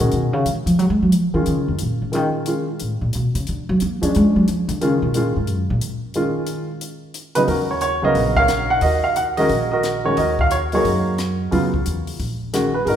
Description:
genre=jazz piano trio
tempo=179 BPM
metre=4/4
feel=swing 64% on 8ths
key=Eb minor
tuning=A4 = 440 Hz
part: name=warm baby grand piano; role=melody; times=0.0-13.0 s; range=Db3 to Gb5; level=-19 LUFS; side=right 1 dB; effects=none
part: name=upright bass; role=bass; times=0.0-13.0 s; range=Ab1 to Bb3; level=-20 LUFS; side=equal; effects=none
part: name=compact cocktail drum kit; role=drums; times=0.0-13.0 s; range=hi-hat, kick drum, rim click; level=-29 LUFS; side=left 3 dB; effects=none
room=wet recital hall reverb, RT60 1.7 s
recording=recorded in a church or concert hall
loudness=-17 LUFS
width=side -9 dB against mid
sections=0.0-7.5 A section; 7.5-13.0 B section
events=upright bass solo 0.0-7.5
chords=0.0 Abm7; 0.8 Ebm7; 2.1 B7; 3.5 Bb7#9; 4.8 Ebm7; 6.8 N.C.; 7.5 Ebm7

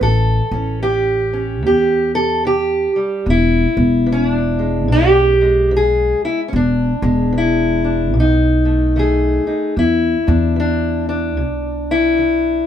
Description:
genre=acoustic country blues, solo or duo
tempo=74 BPM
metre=4/4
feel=swing 62% on 8ths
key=E mixolydian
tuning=A4 = 440 Hz
part: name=fingerpicked steel-string acoustic guitar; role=melody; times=0.0-12.7 s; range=E2 to A4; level=-16 LUFS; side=equal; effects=none
part: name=upright bass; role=bass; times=0.0-12.6 s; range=E1 to E2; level=-17 LUFS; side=equal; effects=none
room=light reverb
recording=band playing live in one room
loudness=-14 LUFS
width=side -9 dB against mid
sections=0.0-9.8 A section; 9.8-12.7 A section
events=none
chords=0.0 A7; 3.3 E7; 8.1 B7; 9.8 E5

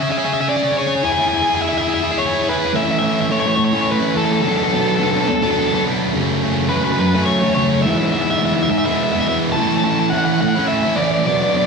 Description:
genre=rock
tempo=106 BPM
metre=3/4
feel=straight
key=A major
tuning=A4 = 438 Hz
part: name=overdriven electric guitar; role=melody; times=0.0-11.6 s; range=A4 to A5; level=-19 LUFS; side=left 1 dB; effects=none
part: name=thick fuzz guitar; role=riff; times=0.0-11.7 s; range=F#2 to G#4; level=-17 LUFS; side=right 1 dB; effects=distortion
room=wet stone room reverb, RT60 1.3 s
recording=band playing live in one room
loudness=-15 LUFS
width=side -4 dB against mid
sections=0.0-2.7 A section; 2.7-11.7 B section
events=build-up 0.0-2.7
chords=0.0 F#sus2 (rootless); 1.0 E; 2.7 A; 4.4 Bm7; 6.1 F#m; 7.8 E/G#; 9.6 A6

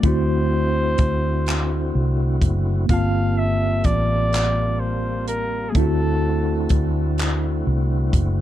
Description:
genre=slow six-eight R&B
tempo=42 BPM (dotted quarters)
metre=6/8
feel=straight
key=unclear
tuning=A4 = 440 Hz
part: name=mellow tine electric piano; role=accompaniment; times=0.0-8.4 s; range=A3 to A5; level=-25 LUFS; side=equal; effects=medium stereo tremolo
part: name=percussive tonewheel organ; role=sustained chords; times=0.0-8.4 s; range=D3 to F#4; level=-32 LUFS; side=left 1 dB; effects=overdrive, fast rotary speaker
part: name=vintage muted fingered electric bass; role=bass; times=0.0-8.4 s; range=F#1 to D2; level=-21 LUFS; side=equal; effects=none
part: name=compact cocktail drum kit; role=drums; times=0.0-8.4 s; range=handclaps, hi-hat, kick drum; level=-22 LUFS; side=equal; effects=none
part: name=clear flugelhorn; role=melody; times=0.1-6.8 s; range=Ab4 to F5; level=-26 LUFS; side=equal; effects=tape echo
room=little or no reverb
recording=dry, close 1970s-style studio recording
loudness=-18 LUFS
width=side -12 dB against mid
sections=0.0-8.4 A section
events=none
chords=0.0 D9; 2.9 Gm11; 5.7 D9

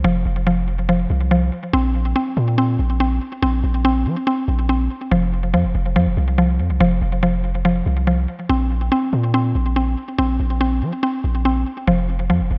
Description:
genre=hip hop, drill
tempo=142 BPM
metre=4/4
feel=half-time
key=unclear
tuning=A4 = 441 Hz
part: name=mallet-like synth pluck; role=arpeggios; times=0.0-12.6 s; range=F3 to C4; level=-22 LUFS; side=equal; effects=chorus, low-pass filter, tape echo
part: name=long sustained 808-style bass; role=bass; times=0.0-12.6 s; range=F1 to F3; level=-22 LUFS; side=equal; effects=none
room=light reverb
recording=dark, warm production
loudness=-19 LUFS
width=mono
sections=0.0-8.5 A section; 8.5-12.6 B section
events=none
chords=0.0 F5; 1.7 Bbsus2; 5.1 F5; 8.5 Bbsus2; 11.9 F5

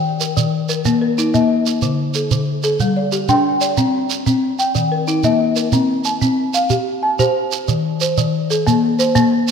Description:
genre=southern african traditional, mbira-style interlocking cycle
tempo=123 BPM (dotted quarters)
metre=12/8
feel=straight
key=C equiheptatonic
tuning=A4 = 441 Hz
part: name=folk marimba with soft mallets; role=arpeggios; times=0.0-9.5 s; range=D3-29c to A5-43c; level=-16 LUFS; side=left 2 dB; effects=none
part: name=shekere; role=percussion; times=0.2-9.5 s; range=none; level=-21 LUFS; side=right 7 dB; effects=none
room=wet plate reverb, RT60 2.9 s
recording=dreamy mix soaked in reverb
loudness=-15 LUFS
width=side -6 dB against mid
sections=0.0-5.7 A section; 5.7-9.5 B section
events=none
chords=0.0 Eb5; 1.8 D5; 2.8 G5; 3.8 C5; 4.8 Eb; 5.7 C5; 7.7 Eb5

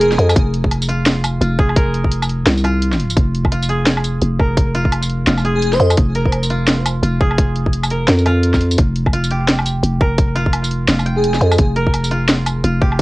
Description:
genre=half-time drum and bass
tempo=171 BPM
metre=4/4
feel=swing 60% on 16ths, half-time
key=F minor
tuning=A4 = 440 Hz
part: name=airy dreamy lead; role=melody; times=0.0-0.4, 5.6-5.9, 11.2-11.6 s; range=Ab4 to C5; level=-21 LUFS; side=equal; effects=chorus, cassette tape, tape echo
part: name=koto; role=arpeggios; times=0.0-13.0 s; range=F4 to G5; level=-24 LUFS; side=right 1 dB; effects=cassette tape, analog delay
part: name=growling 808-style bass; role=bass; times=0.0-13.0 s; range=F1 to F2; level=-16 LUFS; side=equal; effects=none
part: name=drum and bass drum kit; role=drums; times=0.0-13.0 s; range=hi-hat, snare drum, tambourine, woodblock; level=-18 LUFS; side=equal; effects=cassette tape
part: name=electronic kick drum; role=drums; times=0.4-13.0 s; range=none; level=-15 LUFS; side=equal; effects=cassette tape
room=little or no reverb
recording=home recording on cassette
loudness=-13 LUFS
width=side -19 dB against mid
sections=0.0-13.0 A section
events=none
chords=0.0 Fm

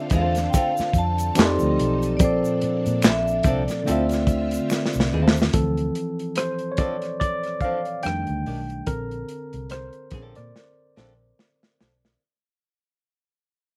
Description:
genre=R&B, neo-soul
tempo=72 BPM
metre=4/4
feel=swing 57% on 16ths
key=D minor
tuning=A4 = 440 Hz
part: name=barky tine electric piano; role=accompaniment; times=0.0-12.2 s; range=Bb2 to G5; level=-28 LUFS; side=equal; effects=none
part: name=string machine, violins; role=sustained chords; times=0.0-5.5 s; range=D3 to E5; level=-39 LUFS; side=equal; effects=ensemble chorus
part: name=flamenco guitar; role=second line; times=0.1-11.9 s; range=Eb3 to A4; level=-33 LUFS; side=equal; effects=none
part: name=vintage muted fingered electric bass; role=bass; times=0.1-12.2 s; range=Bb1 to Bb2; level=-29 LUFS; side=equal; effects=none
part: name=crunchy breakbeat drum kit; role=drums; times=0.1-12.2 s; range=handclaps, hi-hat, kick drum, rim click, snare drum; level=-23 LUFS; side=equal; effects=none
part: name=egg shaker and finger snaps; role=percussion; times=0.1-5.5 s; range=none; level=-39 LUFS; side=equal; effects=none
part: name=vibraphone with medium hard mallets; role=melody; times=0.2-5.1 s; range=C5 to C6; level=-29 LUFS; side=equal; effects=none
room=little or no reverb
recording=recorded outdoors, with no room sound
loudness=-23 LUFS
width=mono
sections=0.0-5.5 A section; 5.5-12.2 B section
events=drum fill 4.7-5.5, 10.5-12.2; fade-out 5.5-12.2; tine electric piano solo 5.5-12.2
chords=0.0 Dm7; 1.4 F13; 2.2 Bbmaj9; 3.9 Dm9; 5.5 Dm7; 8.0 F13; 8.9 Bbmaj9

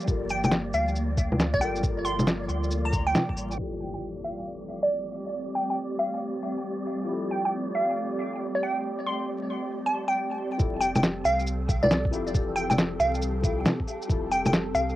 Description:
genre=future garage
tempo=137 BPM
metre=4/4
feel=swing 65% on 16ths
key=unclear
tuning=A4 = 436 Hz
part: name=ethereal airy pad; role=sustained chords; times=0.0-15.0 s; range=F3 to G4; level=-33 LUFS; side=right 1 dB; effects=ensemble chorus, built-in reverb, vintage 12-bit sampler grit, sidechain pumping, cassette tape
part: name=electronic shaker, cabasa, bongos and snare drum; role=drums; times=0.0-3.6, 10.6-15.0 s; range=none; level=-25 LUFS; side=equal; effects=low-pass filter on snare, cassette tape, low-pass filter on perc
part: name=wind-like tuned noise texture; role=texture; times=0.0-15.0 s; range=A4 to D5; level=-39 LUFS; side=equal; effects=built-in reverb, cassette tape
part: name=felt-muted upright piano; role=accompaniment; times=0.1-14.3 s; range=E3 to Bb4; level=-37 LUFS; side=left 6 dB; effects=sidechain pumping, cassette tape, tape echo
part: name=warm sub bass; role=bass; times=0.1-3.6, 10.6-15.0 s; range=F1 to D2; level=-32 LUFS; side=equal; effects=sidechain pumping
part: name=electronic kick drum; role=drums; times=0.1-3.4, 10.6-14.2 s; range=none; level=-27 LUFS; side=equal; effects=cassette tape
part: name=glassy wavetable pluck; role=melody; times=0.3-15.0 s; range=D5 to C6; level=-28 LUFS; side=equal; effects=chorus, cassette tape, tape echo
part: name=impact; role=sound effects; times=3.6-5.3 s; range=none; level=-41 LUFS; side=equal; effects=none
room=moderate booth ambience, RT60 0.2 s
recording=home recording on cassette, vinyl crackle, low-pass filter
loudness=-24 LUFS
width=side -15 dB against mid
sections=0.0-3.6 A section; 3.6-10.6 B section; 10.6-15.0 C section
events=band accent 3.1; impact 3.6-5.3; filter sweep on ambient pad 3.6-10.6; filter sweep 3.6-10.6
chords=0.0 Gm9; 3.6 Fmaj9

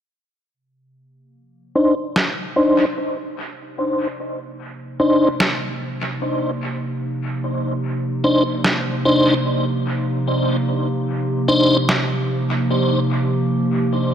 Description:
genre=ambient dub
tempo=74 BPM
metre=4/4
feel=swing 60% on 16ths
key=C minor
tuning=A4 = 440 Hz
part: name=warbly tape-like pad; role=sustained chords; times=0.5-14.1 s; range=C3 to G4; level=-22 LUFS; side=right 1 dB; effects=chorus, built-in reverb
part: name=tonewheel organ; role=stabs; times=1.8-11.8 s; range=D4 to C5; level=-19 LUFS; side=left 1 dB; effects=chorus vibrato, low-pass filter, dub echo
part: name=electronic snare drum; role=drums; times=2.2-12.1 s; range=none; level=-23 LUFS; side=right 1 dB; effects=studio reverb, dub echo
room=wet concert hall reverb, RT60 2.3 s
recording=none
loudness=-17 LUFS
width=side -9 dB against mid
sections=0.5-14.1 A section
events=fade-in on ambient pad 0.5-14.1; filter sweep on tonewheel organ 0.5-14.1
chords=0.5 Cmadd9

